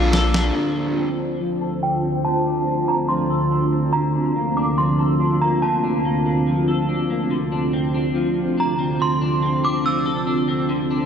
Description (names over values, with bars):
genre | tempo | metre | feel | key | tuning
dream pop | 71 BPM | 4/4 | straight | D minor | A4 = 440 Hz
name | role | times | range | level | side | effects
synth chime | melody | 0.0-10.4 s | G5 to E6 | -24 LUFS | right 1 dB | ensemble chorus, low-pass filter, tape echo
overdriven electric guitar | accompaniment | 0.0-1.1 s | Bb3 to A4 | -25 LUFS | right 1 dB | tremolo, lush chorus
string machine, cellos | sustained chords | 0.0-11.1 s | D2 to A5 | -21 LUFS | right 1 dB | ensemble chorus, low-pass filter
clean electric guitar | arpeggios | 0.0-11.1 s | D3 to A4 | -26 LUFS | left 3 dB | analog chorus, low-pass filter, tape echo
saturated sub bass | bass | 0.0-0.5 s | Bb1 | -20 LUFS | equal | none
detuned 8-bit digital drum machine | drums | 0.1-0.5 s | ride cymbal, snare drum | -25 LUFS | equal | none
room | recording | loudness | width
moderate lush hall reverb, RT60 3.0 s | none | -18 LUFS | side -7 dB against mid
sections
0.6-11.1 A section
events
drum fill 0.0-0.6; filter sweep 0.6-11.1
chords
0.0 Bbmaj7; 0.6 Dm7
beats
| 0.55 1.40 2.24 3.09 | 3.94 4.78 5.62 6.47 | 7.32 8.16 9.01 9.85 | 10.70